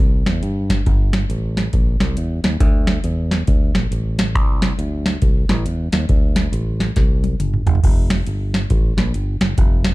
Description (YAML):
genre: uptempo gospel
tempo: 138 BPM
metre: 4/4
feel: swing 62% on 8ths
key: unclear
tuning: A4 = 438 Hz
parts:
  - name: fingered electric bass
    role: bass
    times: 0.0-9.9 s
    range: F1 to G2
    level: -21 LUFS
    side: equal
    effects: none
  - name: booming analog drum machine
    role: drums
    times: 0.3-9.9 s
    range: crash cymbal, hi-hat, kick drum, snare drum, toms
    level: -17 LUFS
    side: equal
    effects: none
room: little or no reverb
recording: dark, warm production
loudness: -16 LUFS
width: side -19 dB against mid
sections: 0.0-9.9 A section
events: drum fill 7.0-7.8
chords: none